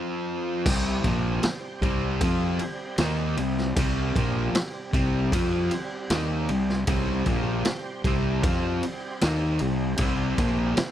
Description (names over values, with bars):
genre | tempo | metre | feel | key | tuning
blues rock power trio and southern rock | 77 BPM | 4/4 | straight | unclear | A4 = 440 Hz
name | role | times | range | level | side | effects
overdriven tonewheel organ | sustained chords | 0.0-10.9 s | G3 to Db5 | -37 LUFS | right 5 dB | slow rotary speaker, chorus vibrato
fuzz guitar | riff | 0.0-10.8 s | Bb2 to F4 | -27 LUFS | left 1 dB | distortion
fuzz fingered electric bass | bass | 0.7-10.8 s | Bb1 to F2 | -28 LUFS | equal | overdrive
raw garage drum kit | drums | 0.7-10.9 s | crash cymbal, kick drum, ride cymbal, snare drum | -28 LUFS | equal | none
room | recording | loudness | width
studio reverb | dry, close 1970s-style studio recording | -23 LUFS | side -11 dB against mid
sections
0.7-10.9 A section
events
break 0.0-0.7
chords
0.0 F5; 0.7 C